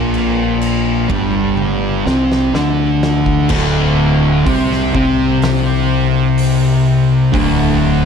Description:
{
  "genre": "stoner and doom metal",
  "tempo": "62 BPM",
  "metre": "4/4",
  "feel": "straight",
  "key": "unclear",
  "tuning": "A4 = 440 Hz",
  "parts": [
    { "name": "thick fuzz guitar", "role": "riff", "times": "0.0-8.1 s", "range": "D2 to D4", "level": "-17 LUFS", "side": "left 13 dB", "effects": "distortion" },
    { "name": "thick fuzz guitar", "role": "riff", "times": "0.0-8.1 s", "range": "D2 to D4", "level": "-17 LUFS", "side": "right 7 dB", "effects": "distortion" },
    { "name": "fuzz fingered electric bass", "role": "bass", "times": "0.0-8.1 s", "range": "D1 to D2", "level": "-20 LUFS", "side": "equal", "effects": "overdrive" },
    { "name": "oversized low-tuned drum kit", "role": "drums", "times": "0.1-7.6 s", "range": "crash cymbal, hi-hat, kick drum, snare drum, toms", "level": "-22 LUFS", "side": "equal", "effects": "none" },
    { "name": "cranked stack guitar", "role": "riff", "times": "3.5-8.1 s", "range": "D2 to C4", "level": "-19 LUFS", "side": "equal", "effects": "overdrive" }
  ],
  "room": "light reverb, studio reverb",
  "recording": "dark, warm production",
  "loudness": "-12 LUFS",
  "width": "side -6 dB against mid",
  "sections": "0.0-3.5 A section; 3.5-8.1 B section",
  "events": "drum fill 1.6-3.5",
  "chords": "0.0 Gmadd11; 3.5 N.C.",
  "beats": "0.62 1.58 2.54 | 3.50 4.46 5.42 6.38 | 7.33"
}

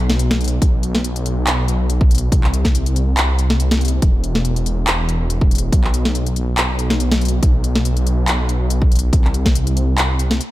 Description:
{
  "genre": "future bass",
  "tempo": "141 BPM",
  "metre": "4/4",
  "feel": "swing 54% on 16ths, half-time",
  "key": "unclear",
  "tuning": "A4 = 440 Hz",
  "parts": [
    { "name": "wide detuned saw bass", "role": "bass", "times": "0.0-10.4 s", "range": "E1 to C2", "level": "-17 LUFS", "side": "equal", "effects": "chorus, sidechain pumping" },
    { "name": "trap drum kit", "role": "drums", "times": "0.1-10.5 s", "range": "handclaps, hi-hat, snare drum", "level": "-21 LUFS", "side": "left 1 dB", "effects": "none" },
    { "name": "electronic kick drum", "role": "drums", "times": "0.6-9.5 s", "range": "none", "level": "-15 LUFS", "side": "equal", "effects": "none" }
  ],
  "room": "little or no reverb",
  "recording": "none",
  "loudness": "-14 LUFS",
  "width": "side -16 dB against mid",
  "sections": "0.0-10.5 A section",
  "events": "none",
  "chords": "none",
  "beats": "0.19 | 0.62 1.04 1.47 1.90 | 2.32 2.75 3.17 3.60 | 4.02 4.45 4.87 5.30 | 5.72 6.15 6.58 7.00 | 7.43 7.85 8.28 8.70 | 9.13 9.55 9.98 10.41"
}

